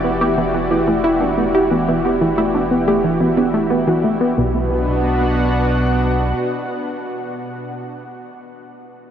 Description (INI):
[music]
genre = ambient, sequencer-driven space music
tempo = 90 BPM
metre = 4/4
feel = straight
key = B minor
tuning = A4 = 441 Hz
[part]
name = lush unison pad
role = sustained chords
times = 0.0-7.8 s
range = B2 to F#5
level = -20 LUFS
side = equal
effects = chorus
[part]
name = tight sequenced synth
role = riff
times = 0.0-4.7 s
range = B2 to G4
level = -19 LUFS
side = right 1 dB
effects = chorus, analog delay
[part]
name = warm sub bass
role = bass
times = 0.0-6.3 s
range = E1 to B1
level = -25 LUFS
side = equal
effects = none
[part]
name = soft round pluck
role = arpeggios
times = 0.2-4.7 s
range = A3 to B4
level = -23 LUFS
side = left 1 dB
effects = chorus, auto-pan, analog delay
[sound]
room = wet huge ambient reverb, RT60 8.2 s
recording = worn, warbling old tape, cassette tape, warbly pitch drift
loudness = -15 LUFS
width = side -9 dB against mid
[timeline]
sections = 0.0-4.4 A section; 4.4-7.0 B section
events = none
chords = 0.0 Em7; 4.4 Bm